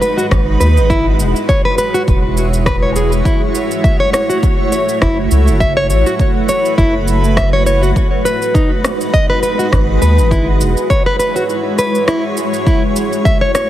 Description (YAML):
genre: organic downtempo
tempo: 102 BPM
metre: 4/4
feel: swing 55% on 16ths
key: F# dorian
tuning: A4 = 440 Hz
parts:
  - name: granular cloud pad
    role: sustained chords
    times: 0.0-13.7 s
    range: G#3 to C#5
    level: -18 LUFS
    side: right 1 dB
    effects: built-in reverb, sidechain pumping
  - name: nylon-string guitar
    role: arpeggios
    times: 0.0-13.7 s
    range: D#4 to E5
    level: -16 LUFS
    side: equal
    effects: tape echo
  - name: electronic shaker and rim click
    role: drums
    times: 0.0-13.7 s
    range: none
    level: -22 LUFS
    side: equal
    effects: none
  - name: round analog bass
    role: bass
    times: 0.3-10.7 s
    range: E1 to D#2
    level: -14 LUFS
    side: equal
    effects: sidechain pumping
  - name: electronic kick drum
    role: drums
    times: 0.3-13.4 s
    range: none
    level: -15 LUFS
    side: equal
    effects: none
room: light reverb, digital ambience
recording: heavily compressed radio sound, multiband compression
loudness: -11 LUFS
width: side -13 dB against mid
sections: 0.0-13.7 A section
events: break 11.5-12.7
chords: 0.0 G#m7; 0.9 E69; 3.3 F#m7; 8.0 G#m7; 10.3 E69; 12.7 F#m7